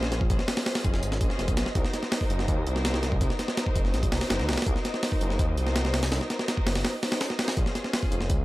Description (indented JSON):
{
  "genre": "drum and bass, jungle",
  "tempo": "165 BPM",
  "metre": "4/4",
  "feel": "straight",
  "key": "unclear",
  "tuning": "A4 = 440 Hz",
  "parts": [
    { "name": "dark studio string section", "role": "sustained chords", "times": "0.0-8.4 s", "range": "Db4 to C5", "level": "-34 LUFS", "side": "equal", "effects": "none" },
    { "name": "dark detuned saw bass", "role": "bass", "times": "0.0-8.4 s", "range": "F1 to Eb2", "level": "-28 LUFS", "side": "equal", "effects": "none" },
    { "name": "breakbeat sampler-style drum kit", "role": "drums", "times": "0.0-8.4 s", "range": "hi-hat, kick drum, snare drum", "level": "-26 LUFS", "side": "equal", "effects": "none" },
    { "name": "wind-like tuned noise texture", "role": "texture", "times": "0.0-8.4 s", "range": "C5 to Eb6", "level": "-40 LUFS", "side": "right 1 dB", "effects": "built-in reverb" }
  ],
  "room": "little or no reverb",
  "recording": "dry, gritty hardware recording",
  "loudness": "-24 LUFS",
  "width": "side -18 dB against mid",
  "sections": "0.0-8.4 A section",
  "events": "none",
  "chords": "0.0 Bbm7; 1.8 Cm7b5; 7.6 Bbm7 (rootless)"
}